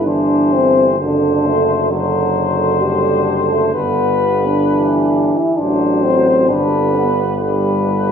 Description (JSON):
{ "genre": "classical, hymn-like piece for brass band", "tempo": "62-69 BPM", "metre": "3/4", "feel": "rubato", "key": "G major", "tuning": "A4 = 440 Hz", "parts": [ { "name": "warm flugelhorn", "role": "melody", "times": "0.0-8.1 s", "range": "B4 to C5", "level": "-21 LUFS", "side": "left 5 dB", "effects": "none" }, { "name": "clear euphonium", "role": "accompaniment", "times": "0.0-8.1 s", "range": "F#3 to E4", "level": "-16 LUFS", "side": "left 2 dB", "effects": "none" }, { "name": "warm euphonium", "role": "accompaniment", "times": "0.0-8.1 s", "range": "D3 to F#3", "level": "-22 LUFS", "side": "right 2 dB", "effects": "none" }, { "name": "warm tuba", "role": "bass", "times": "0.0-8.1 s", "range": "F#1 to A1", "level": "-20 LUFS", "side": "right 1 dB", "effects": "none" }, { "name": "mellow French horn section", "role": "second line", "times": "0.1-8.1 s", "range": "F#4 to A4", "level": "-23 LUFS", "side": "right 8 dB", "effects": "none" } ], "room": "wet recital hall reverb, RT60 1.4 s", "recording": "recorded in a church or concert hall, nothing above 7.5 kHz", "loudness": "-13 LUFS", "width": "side -7 dB against mid", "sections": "0.0-8.1 A section", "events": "none", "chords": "0.1 C/G; 1.0 D7/F#; 3.8 G; 5.6 F#dim/A; 6.5 G" }